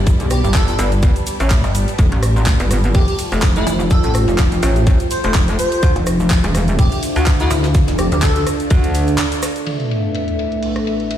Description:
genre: bass house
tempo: 125 BPM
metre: 4/4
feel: swing 56% on 16ths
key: unclear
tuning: A4 = 439 Hz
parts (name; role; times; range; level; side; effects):
- dark analog pad; sustained chords; 0.0-11.2 s; G3 to F5; -27 LUFS; equal; chorus, sidechain pumping
- pulsing pluck wobble bass; bass; 0.0-8.4 s; F1 to D2; -16 LUFS; equal; chorus, sidechain pumping
- ethereal airy pad; texture; 0.0-11.2 s; D4 to B5; -24 LUFS; right 1 dB; ensemble chorus, built-in reverb, phaser, sidechain pumping
- damped 70s drum kit; drums; 0.1-11.2 s; hi-hat, ride cymbal, snare drum; -32 LUFS; left 3 dB; sidechain pumping on cymbals, high-pass filter on cymbals, low-pass filter on cymbals, sidechain pumping on hats, high-pass filter on hats, low-pass filter on hats, high-pass filter on snare, low-pass filter on snare, high-pass filter on room, low-pass filter on room
- electronic kick drum; drums; 0.1-8.8 s; none; -13 LUFS; equal; none
- garage drum kit; drums; 0.1-11.2 s; crash cymbal, handclaps, hi-hat, rim click; -25 LUFS; equal; overdrive, low-pass filter on hats, low-pass filter on cymbals, low-pass filter on snare
- cabasa; percussion; 0.1-9.6 s; none; -34 LUFS; right 4 dB; none
- airy dreamy lead; melody; 0.3-8.4 s; E4 to C5; -23 LUFS; left 1 dB; chorus, ping-pong delay
- metallic wobble bass; bass; 0.8-9.2 s; E1 to D2; -16 LUFS; equal; chorus, overdrive, sidechain pumping
- sub drop; sound effects; 9.7-11.2 s; none; -24 LUFS; equal; none
room: small room ambience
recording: played on a big sound system in a bare room, stone room reverb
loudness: -13 LUFS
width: side -11 dB against mid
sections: 0.0-9.7 A section; 9.7-11.2 B section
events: drop 0.0-9.7; break 9.2-9.7; impact 9.7-11.2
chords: 0.0 G; 2.0 Fadd9; 5.8 Dmadd9; 9.7 Asus2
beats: | 0.07 0.55 1.03 1.51 | 1.99 2.47 2.95 3.43 | 3.91 4.39 4.87 5.35 | 5.83 6.31 6.79 7.27 | 7.75 8.23 8.71 9.19 | 9.67 10.15 10.63 11.11

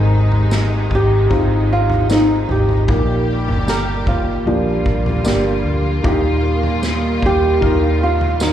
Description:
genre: pop ballad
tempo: 76 BPM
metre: 4/4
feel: straight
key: Eb major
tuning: A4 = 440 Hz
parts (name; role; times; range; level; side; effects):
- dark upright piano; accompaniment; 0.0-8.5 s; Ab2 to Bb4; -20 LUFS; left 2 dB; slapback echo
- rich studio string section; sustained chords; 0.0-8.5 s; C3 to G4; -23 LUFS; right 1 dB; none
- vintage muted fingered electric bass; bass; 0.0-8.5 s; G1 to Eb2; -18 LUFS; equal; none
- unplugged drum kit; drums; 0.3-8.5 s; kick drum, snare drum, toms; -22 LUFS; equal; none
- tambourine; percussion; 0.5-8.5 s; none; -32 LUFS; right 2 dB; none
- flamenco guitar; melody; 0.9-8.5 s; Eb4 to Bb4; -19 LUFS; right 2 dB; slapback echo
room: light reverb, small room ambience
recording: live gig heard through the venue's PA, club reverb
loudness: -14 LUFS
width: side -10 dB against mid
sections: 0.0-8.5 A section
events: none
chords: 0.0 Ab; 2.9 Eb; 4.5 Bb6; 6.0 Ebadd9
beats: 0.52 1.30 2.09 | 2.88 3.67 4.46 5.25 | 6.04 6.83 7.62 8.41

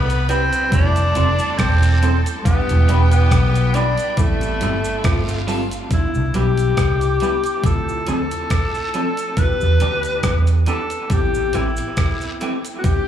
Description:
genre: lovers rock reggae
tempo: 69 BPM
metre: 4/4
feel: swing 55% on 16ths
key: A minor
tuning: A4 = 441 Hz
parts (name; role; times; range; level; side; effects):
- breathy tenor saxophone; melody; 0.0-13.1 s; A3 to B4; -22 LUFS; left 2 dB; dub echo, plate reverb, slapback echo
- clear symphonic string section; second line; 0.0-5.9, 12.9-13.1 s; E4 to B5; -30 LUFS; left 2 dB; dub echo, plate reverb, slapback echo
- tine electric piano; accompaniment; 0.0-13.1 s; G3 to B4; -29 LUFS; left 3 dB; ensemble chorus, slapback echo
- vintage muted fingered electric bass; bass; 0.0-11.8 s; E1 to E2; -17 LUFS; equal; none
- detuned 8-bit digital drum machine; drums; 0.1-13.1 s; hi-hat, kick drum, rim click; -21 LUFS; equal; none
- cabasa and guiro; percussion; 0.1-13.1 s; none; -38 LUFS; right 3 dB; dub echo
- electric guitar through a small old amp; stabs; 0.3-12.5 s; E3 to C5; -27 LUFS; right 2 dB; wide subtle chorus, dub echo, plate reverb, slapback echo
room: light reverb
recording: live gig heard through the venue's PA, club reverb, studio ambience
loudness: -16 LUFS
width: side -10 dB against mid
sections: 0.0-5.9 A section; 5.9-13.1 B section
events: none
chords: 0.0 Cmaj7; 0.7 Fmaj7; 2.5 Em7; 4.2 Am7; 5.0 G9sus4; 5.9 Cmaj7; 7.6 Dm7; 9.4 Em7; 11.1 Am7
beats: 0.72 1.59 | 2.45 3.32 4.18 5.05 | 5.91 6.78 7.64 8.51 | 9.38 10.24 11.11 11.98 | 12.85

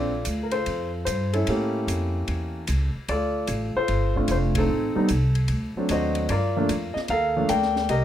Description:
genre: jazz piano trio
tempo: 149 BPM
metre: 4/4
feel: swing 66% on 8ths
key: unclear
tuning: A4 = 435 Hz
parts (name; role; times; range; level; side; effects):
- warm concert grand piano; melody; 0.0-8.0 s; F3 to G5; -24 LUFS; left 1 dB; none
- upright bass; bass; 0.0-8.0 s; F1 to A2; -26 LUFS; equal; none
- open jazz drum kit; drums; 0.2-8.0 s; hi-hat, kick drum, ride cymbal, snare drum; -35 LUFS; equal; none
room: light reverb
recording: none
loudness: -22 LUFS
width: side -11 dB against mid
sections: 0.0-8.0 A section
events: band accent 4.5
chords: 0.0 Bbmaj9; 1.5 A7b9; 3.1 Dm7; 4.7 Adim; 5.5 D7b9; 6.3 Gm9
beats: 0.27 0.68 1.08 | 1.48 1.88 2.28 2.68 | 3.08 3.49 3.89 4.29 | 4.69 5.09 5.50 5.90 | 6.30 6.70 7.10 7.50 | 7.90

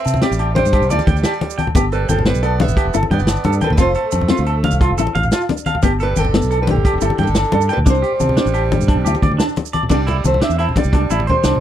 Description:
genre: highlife guitar band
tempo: 118 BPM (dotted quarters)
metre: 12/8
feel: straight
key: C major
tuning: A4 = 444 Hz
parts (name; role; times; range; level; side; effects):
- fingerpicked steel-string acoustic guitar; melody; 0.0-11.6 s; G4 to E5; -22 LUFS; right 1 dB; none
- raspy tenor saxophone; second line; 0.0-11.6 s; D3 to C4; -28 LUFS; right 12 dB; none
- vintage drum kit; drums; 0.0-11.5 s; crash cymbal, hi-hat, kick drum, snare drum; -18 LUFS; equal; none
- fingered electric bass; bass; 0.1-11.6 s; E1 to C3; -18 LUFS; equal; none
- agogo bells; percussion; 0.1-11.6 s; none; -27 LUFS; left 12 dB; none
- congas; percussion; 0.1-11.6 s; none; -21 LUFS; left 2 dB; none
- maracas; percussion; 0.1-11.5 s; none; -32 LUFS; right 20 dB; none
- nylon-string guitar; accompaniment; 0.2-11.3 s; B3 to E4; -24 LUFS; left 8 dB; none
- clean electric guitar; arpeggios; 0.2-11.5 s; D4 to G5; -22 LUFS; right 5 dB; slapback echo
room: small room ambience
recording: dry, close 1970s-style studio recording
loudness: -14 LUFS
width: side -11 dB against mid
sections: 0.0-9.9 A section; 9.9-11.6 B section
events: none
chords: 0.0 Csus2; 1.8 Gadd9; 3.8 F; 5.8 Gadd9; 7.9 Csus2; 9.9 Cadd9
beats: 0.23 0.73 1.24 | 1.75 2.26 2.77 3.28 | 3.79 4.30 4.81 5.32 | 5.83 6.34 6.85 7.36 | 7.87 8.38 8.89 9.40 | 9.91 10.42 10.93 11.45

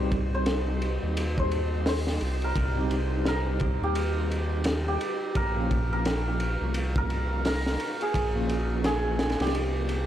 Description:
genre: trip hop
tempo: 86 BPM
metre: 4/4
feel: swing 60% on 16ths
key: C phrygian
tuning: A4 = 439 Hz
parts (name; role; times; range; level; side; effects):
- santur; melody; 0.0-10.1 s; G4 to C5; -32 LUFS; right 1 dB; tape echo
- tine electric piano; accompaniment; 0.0-10.1 s; F3 to G4; -34 LUFS; equal; medium stereo tremolo, tape echo
- string machine, cellos; sustained chords; 0.0-10.1 s; G4 to Db6; -40 LUFS; equal; ensemble chorus
- round analog bass; bass; 0.0-10.1 s; Bb1 to Eb2; -29 LUFS; equal; tube saturation
- crunchy breakbeat drum kit; drums; 0.1-10.1 s; hi-hat, kick drum, ride cymbal, snare drum; -30 LUFS; equal; none
room: small room ambience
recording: dry, gritty hardware recording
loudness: -25 LUFS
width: side -11 dB against mid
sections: 0.0-10.1 A section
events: none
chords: 0.0 Cm; 5.4 Bbm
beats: 0.47 1.17 1.86 | 2.56 3.26 3.96 4.66 | 5.35 6.05 6.75 7.45 | 8.14 8.84 9.54

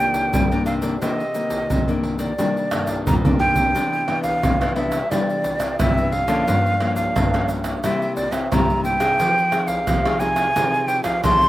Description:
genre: samba and choro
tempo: 88 BPM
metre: 4/4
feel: straight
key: C minor, C major from 3.7 s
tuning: A4 = 440 Hz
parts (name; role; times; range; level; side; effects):
- breathy mellow jazz flute; melody; 0.0-11.5 s; D5 to C6; -21 LUFS; right 1 dB; none
- nylon-string guitar; accompaniment; 0.0-11.5 s; G2 to Ab4; -25 LUFS; left 2 dB; none
- nylon-string guitar; bass; 0.0-11.5 s; G2 to C4; -27 LUFS; equal; none
- egg shaker, surdo, pandeiro and tamborim; percussion; 0.1-11.5 s; none; -23 LUFS; right 1 dB; none
room: little or no reverb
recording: recorded outdoors, with no room sound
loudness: -18 LUFS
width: side -15 dB against mid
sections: 0.0-3.7 A section; 3.7-11.5 B section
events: drum fill 2.7-3.7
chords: 0.0 Cm9; 3.7 Cmaj9; 6.5 Gm7b5; 7.8 C7; 9.2 Fm7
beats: 0.33 | 1.01 1.70 2.38 3.06 | 3.75 4.43 5.11 5.79 | 6.48 7.16 7.84 8.52 | 9.20 9.88 10.56 11.24

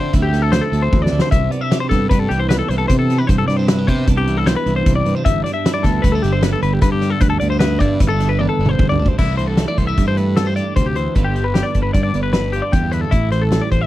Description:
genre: math rock and midwest emo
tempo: 152 BPM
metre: 5/4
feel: straight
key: C major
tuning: A4 = 438 Hz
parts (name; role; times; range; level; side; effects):
- twelve-string electric guitar; accompaniment; 0.0-13.9 s; G2 to G4; -22 LUFS; right 4 dB; none
- twelve-string electric guitar; arpeggios; 0.0-13.9 s; E4 to E5; -22 LUFS; left 5 dB; none
- fuzz fingered electric bass; bass; 0.0-13.9 s; G1 to C3; -19 LUFS; equal; overdrive
- loose indie drum kit; drums; 0.1-13.8 s; crash cymbal, hi-hat, kick drum, snare drum, toms; -18 LUFS; equal; none
room: little or no reverb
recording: vinyl crackle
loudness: -14 LUFS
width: side -15 dB against mid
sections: 0.0-9.2 A section; 9.2-13.9 B section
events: drum fill 0.9-1.3, 8.4-9.2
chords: 0.0 Am7; 1.3 Cmaj9; 5.3 G69; 9.2 C69; 11.2 G7; 13.1 Am7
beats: 0.14 0.53 0.93 | 1.32 1.71 2.11 2.50 2.89 | 3.29 3.68 4.07 4.47 4.86 | 5.25 5.65 6.04 6.43 6.83 | 7.22 7.61 8.00 8.40 8.79 | 9.18 9.58 9.97 10.37 10.76 | 11.15 11.55 11.95 12.34 12.73 | 13.13 13.52

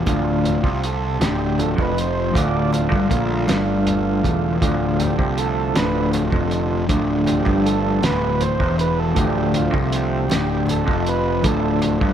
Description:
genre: psychedelic rock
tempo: 53 BPM (dotted quarters)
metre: 6/8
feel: straight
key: D dorian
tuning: A4 = 439 Hz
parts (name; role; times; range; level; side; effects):
- combo organ; sustained chords; 0.0-12.1 s; D3 to D5; -23 LUFS; right 6 dB; none
- electric guitar through a small old amp; riff; 0.0-12.1 s; D2 to C3; -21 LUFS; left 2 dB; harmonic tremolo
- fuzz picked electric bass; bass; 0.0-12.1 s; D1 to C2; -25 LUFS; equal; overdrive
- cloth-damped thuddy drum kit; drums; 0.1-12.1 s; hi-hat, kick drum, snare drum; -23 LUFS; right 1 dB; none
- congas; percussion; 0.1-12.1 s; none; -35 LUFS; equal; none
room: light reverb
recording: none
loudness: -17 LUFS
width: side -9 dB against mid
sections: 0.0-12.1 A section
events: transistor combo organ solo 0.0-12.1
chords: 0.0 Dm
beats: | 0.06 1.20 | 2.34 3.48 | 4.62 5.76 | 6.90 8.04 | 9.17 10.31 | 11.45

